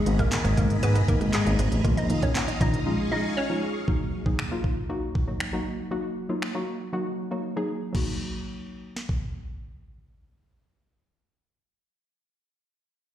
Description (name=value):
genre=dance-pop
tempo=118 BPM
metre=4/4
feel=straight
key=Eb minor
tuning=A4 = 440 Hz
part: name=hollow square pluck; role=melody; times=0.0-3.7 s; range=Ab3 to Eb5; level=-30 LUFS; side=left 1 dB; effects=chorus, plate reverb, slapback echo, digital delay
part: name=phased string machine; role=sustained chords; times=0.0-3.9 s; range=Ab4 to Eb6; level=-35 LUFS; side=equal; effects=ensemble chorus, phaser, sidechain pumping, plate reverb
part: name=soft round pluck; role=accompaniment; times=0.1-12.4 s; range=Eb3 to Ab4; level=-29 LUFS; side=left 1 dB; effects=chorus, sidechain pumping, slapback echo
part: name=direct-recorded clean electric guitar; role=riff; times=0.1-2.7 s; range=Ab3 to Eb4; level=-34 LUFS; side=right 6 dB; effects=wide subtle chorus, slapback echo
part: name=fat analog bass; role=bass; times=0.1-2.8 s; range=Ab1 to Ab2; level=-24 LUFS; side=equal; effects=sidechain pumping
part: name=smooth R&B drum kit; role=drums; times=0.1-9.2 s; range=crash cymbal, finger snaps, handclaps, hi-hat, kick drum, snare drum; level=-27 LUFS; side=equal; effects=none
room=light reverb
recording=live gig heard through the venue's PA, recital hall reverb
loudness=-24 LUFS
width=side -11 dB against mid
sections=0.0-3.9 A section; 3.9-7.9 B section; 7.9-12.0 C section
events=drop 0.0-3.9; break 2.9-3.9; silent gap 6.9-7.9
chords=0.0 Abmadd9; 1.8 Bbsus4; 2.9 Dbadd9; 3.9 Ebm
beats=0.32 0.83 1.34 | 1.84 2.35 2.86 3.37 | 3.88 4.39 4.90 5.41 | 5.91 6.42 6.93 7.44 | 7.95 8.46 8.96 9.47 | 9.98 10.49 11.00 11.51